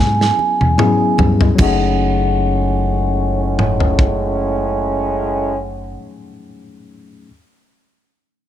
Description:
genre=lush 1970s-style soul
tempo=75 BPM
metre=4/4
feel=swing 54% on 16ths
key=F# dorian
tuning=A4 = 440 Hz
part: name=vibraphone with medium hard mallets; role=melody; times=0.0-6.0 s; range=F#5 to G#5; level=-21 LUFS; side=moving between left 7 dB and right 4 dB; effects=auto-pan
part: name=mellow tine electric piano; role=accompaniment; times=0.0-7.3 s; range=F#3 to G#4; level=-21 LUFS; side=left 5 dB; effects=none
part: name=deep dub fingered electric bass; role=bass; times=0.0-6.0 s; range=F#1 to G#2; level=-20 LUFS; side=equal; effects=none
part: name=modern studio drum kit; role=drums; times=0.2-4.2 s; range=crash cymbal, kick drum, snare drum, toms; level=-17 LUFS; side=equal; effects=none
part: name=congas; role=percussion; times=0.4-2.0 s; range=none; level=-22 LUFS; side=right 4 dB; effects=none
part: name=muted trombone section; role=stabs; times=1.6-5.5 s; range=A2 to C#4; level=-21 LUFS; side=right 2 dB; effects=slapback echo
room=light reverb, small room ambience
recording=none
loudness=-14 LUFS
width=side -11 dB against mid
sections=0.0-1.6 A section; 1.6-4.8 B section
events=drum fill 0.0-1.6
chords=0.0 E6; 1.6 F#m69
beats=0.79 | 1.59 2.39 3.19 3.98

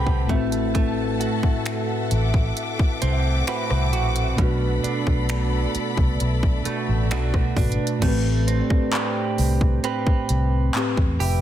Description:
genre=contemporary R&B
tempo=66 BPM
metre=4/4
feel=straight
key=A dorian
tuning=A4 = 440 Hz
part: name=muted felt-like synth keys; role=accompaniment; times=0.0-11.4 s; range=A2 to A5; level=-26 LUFS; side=left 1 dB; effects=chorus
part: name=warm studio string section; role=sustained chords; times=0.0-8.0 s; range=C4 to D6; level=-30 LUFS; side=left 2 dB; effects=none
part: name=direct-recorded clean electric guitar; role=arpeggios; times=0.0-11.4 s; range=B2 to B4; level=-28 LUFS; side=right 7 dB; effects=lush chorus, digital delay
part: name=vintage muted fingered electric bass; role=bass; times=0.0-11.4 s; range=F1 to E2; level=-22 LUFS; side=equal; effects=none
part: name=trap drum kit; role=drums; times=0.1-11.4 s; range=crash cymbal, finger snaps, handclaps, hi-hat, kick drum, rim click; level=-23 LUFS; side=equal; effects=none
part: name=cimbalom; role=texture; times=1.2-11.4 s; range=D4 to A4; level=-38 LUFS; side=left 1 dB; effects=digital delay
room=digital ambience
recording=dense, heavily limited modern master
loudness=-19 LUFS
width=side -11 dB against mid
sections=0.0-8.0 A section; 8.0-11.4 B section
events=synth keys fill 0.0-0.7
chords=0.3 D13/A; 4.4 Bm7; 8.0 Am9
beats=| 0.75 1.66 2.57 3.48 | 4.38 5.29 6.20 7.11 | 8.02 8.93 9.84 10.75

